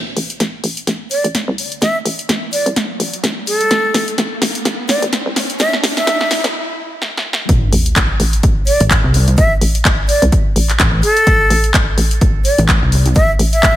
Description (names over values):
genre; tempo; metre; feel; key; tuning
bass house; 127 BPM; 4/4; swing 57% on 16ths; A minor; A4 = 438 Hz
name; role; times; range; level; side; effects
hollow knocking FM bass; bass; 0.0-13.8 s; A1 to C2; -17 LUFS; equal; tube saturation, sidechain pumping, high-pass filter
riser and sub drop; sound effects; 0.0-9.4 s; none; -26 LUFS; right 1 dB; none
house drum kit; drums; 0.2-13.7 s; handclaps, hi-hat, snare drum; -18 LUFS; equal; studio reverb
breathy jazz flute; melody; 1.1-13.8 s; A4 to E5; -17 LUFS; equal; ping-pong delay
electronic kick drum; drums; 7.5-13.7 s; none; -15 LUFS; equal; studio reverb
pulsing pluck wobble bass; bass; 8.8-13.1 s; A1 to C2; -12 LUFS; equal; chorus, tube saturation, sidechain pumping
room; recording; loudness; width
light reverb, digital ambience; high-pass filter; -12 LUFS; side -13 dB against mid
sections
0.0-7.5 A section; 7.5-13.8 B section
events
build-up 0.0-7.5; drum fill 0.0-6.5, 7.0-7.5; riser 0.0-6.5; break 6.5-7.5; drop 7.5-13.8; impact 7.5-9.4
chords
0.0 A5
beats
0.40 0.87 1.35 | 1.82 2.29 2.76 3.24 | 3.71 4.18 4.65 5.13 | 5.60 6.07 6.54 7.02 | 7.49 7.96 8.43 8.91 | 9.38 9.85 10.32 10.79 | 11.27 11.74 12.21 12.69 | 13.16 13.63